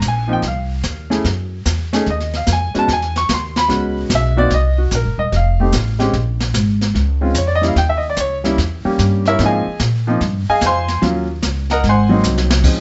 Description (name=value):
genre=jazz piano trio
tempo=148 BPM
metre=4/4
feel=swing 66% on 8ths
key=Ab major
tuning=A4 = 436 Hz
part: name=warm baby grand piano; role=melody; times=0.0-12.8 s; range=F3 to C#6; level=-20 LUFS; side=equal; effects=none
part: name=upright bass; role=bass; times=0.0-12.6 s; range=Eb1 to Bb2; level=-20 LUFS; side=equal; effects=none
part: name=jazz brush drum kit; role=drums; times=0.0-12.8 s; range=brushed snare drum, crash cymbal, hi-hat, kick drum, snare drum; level=-24 LUFS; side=equal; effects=none
room=light reverb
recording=nothing above 7.9 kHz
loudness=-17 LUFS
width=mono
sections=0.0-12.6 A section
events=grand piano solo 0.0-12.6; drum fill 12.2-12.6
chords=0.0 Ab69; 1.2 Gb7(no3); 2.1 B6 (rootless); 2.9 E6; 4.5 Cm7b5; 5.3 F; 6.1 Bbm7; 7.8 Eb7b9; 9.4 Ab69; 11.0 Ebm7; 11.8 Ab7